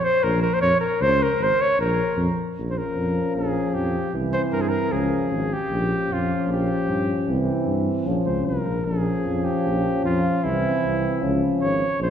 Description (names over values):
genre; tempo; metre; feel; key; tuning
balkan folk, Balkan brass band; 153 BPM; 2/4; swing 54% on 16ths; Bb dorian sharp4; A4 = 440 Hz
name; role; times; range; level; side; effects
warm flugelhorn; melody; 0.0-12.1 s; E4 to Db5; -24 LUFS; equal; none
mellow tuba; bass; 0.2-12.1 s; Ab1 to G2; -25 LUFS; equal; none
dark euphonium; accompaniment; 2.6-12.1 s; C4 to Db4; -27 LUFS; left 2 dB; none
warm euphonium; accompaniment; 2.6-12.1 s; E3 to F3; -28 LUFS; right 3 dB; none
room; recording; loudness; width
wet concert hall reverb, RT60 2.1 s; heard from further back in the room; -20 LUFS; side -8 dB against mid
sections
0.0-2.6 A section; 2.6-12.1 B section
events
flugelhorn solo 2.6-12.1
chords
0.0 Bb5; 1.0 Db5; 1.8 Bb5; 2.6 Bbm; 4.1 C; 4.9 Db; 5.7 Bbm; 7.3 C; 8.1 Bbm; 10.4 C; 11.2 Db